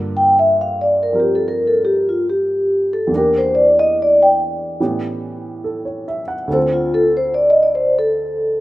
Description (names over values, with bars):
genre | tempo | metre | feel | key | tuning
jazz | 71 BPM | 4/4 | swing 68% on 8ths | G minor | A4 = 440 Hz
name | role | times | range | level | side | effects
dark baby grand piano | accompaniment | 0.0-8.6 s | D2 to F#5 | -24 LUFS | right 2 dB | none
vibraphone with soft mallets | melody | 0.2-8.6 s | F4 to G5 | -14 LUFS | equal | none
room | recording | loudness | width
light reverb, small room ambience | rough home demo mix | -14 LUFS | side -16 dB against mid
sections
0.0-8.6 A section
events
vibraphone solo 0.0-8.6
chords
0.0 Gm9; 3.1 Em7b5; 4.8 A7; 6.5 Dm7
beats
0.55 1.40 2.25 | 3.10 3.94 4.79 5.63 | 6.47 7.30 8.14